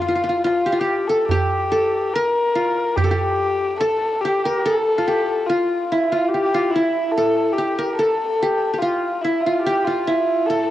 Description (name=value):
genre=Turkish makam ensemble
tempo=72 BPM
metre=4/4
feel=straight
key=G makam nikriz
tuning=A4 = 440 Hz
part: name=qanun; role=melody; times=0.0-10.7 s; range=E4 to Bb4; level=-20 LUFS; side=right 1 dB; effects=none
part: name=dark kamancheh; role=second line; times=0.0-10.7 s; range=E4 to Bb4+21c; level=-21 LUFS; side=left 3 dB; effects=cassette tape
part: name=darbuka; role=percussion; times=0.1-4.3 s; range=none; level=-24 LUFS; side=right 3 dB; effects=none
room=moderate small room reverb, RT60 0.5 s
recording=home recording on cassette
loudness=-17 LUFS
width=side -13 dB against mid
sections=0.0-4.6 A section; 4.6-10.7 B section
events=none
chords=none